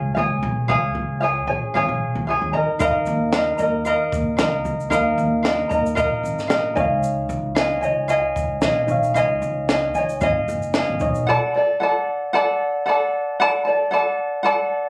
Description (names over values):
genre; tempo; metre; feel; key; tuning
acoustic pop; 113 BPM; 4/4; swing 55% on 16ths; unclear; A4 = 436 Hz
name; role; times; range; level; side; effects
tenor ukulele; accompaniment; 0.0-14.9 s; G#4 to A#5; -22 LUFS; equal; none
upright bass; bass; 0.0-11.2 s; F#1 to D#3; -28 LUFS; equal; none
reed electric piano; accompaniment; 2.8-11.3 s; D#4 to E#5; -28 LUFS; equal; overdrive
compact cocktail drum kit; drums; 2.8-11.3 s; kick drum, shaker, snare drum; -27 LUFS; equal; none
room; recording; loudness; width
little or no reverb; recorded on a phone in the room, club reverb; -21 LUFS; mono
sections
0.0-11.3 A section; 11.3-14.9 B section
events
none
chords
0.0 C#; 2.5 D#sus2; 6.8 C#add9; 11.3 D